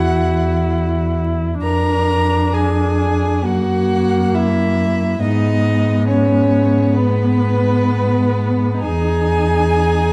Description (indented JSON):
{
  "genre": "classical, slow romantic movement for string quartet",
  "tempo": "59-71 BPM",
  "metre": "4/4",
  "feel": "rubato",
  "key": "unclear",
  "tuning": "A4 = 444 Hz",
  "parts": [
    { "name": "rich violin", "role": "melody", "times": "0.0-10.1 s", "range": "B4 to A#5", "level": "-26 LUFS", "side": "equal", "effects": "none" },
    { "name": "rich violin", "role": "second line", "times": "0.0-10.1 s", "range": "B3 to A#4", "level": "-22 LUFS", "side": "equal", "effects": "none" },
    { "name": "rich viola", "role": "accompaniment", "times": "0.0-10.1 s", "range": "A#3 to E4", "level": "-24 LUFS", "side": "equal", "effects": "none" },
    { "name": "rich cello", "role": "bass", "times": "0.0-10.1 s", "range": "E2 to G#2", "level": "-20 LUFS", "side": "equal", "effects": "none" }
  ],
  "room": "moderate recital hall reverb, RT60 1.3 s",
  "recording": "dark, warm production, vinyl crackle",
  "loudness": "-16 LUFS",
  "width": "mono",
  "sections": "0.0-10.1 A section",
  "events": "none",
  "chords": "0.0 Esus2; 1.6 A#7/E#; 3.4 F#; 5.2 G#m; 8.8 Emaj7"
}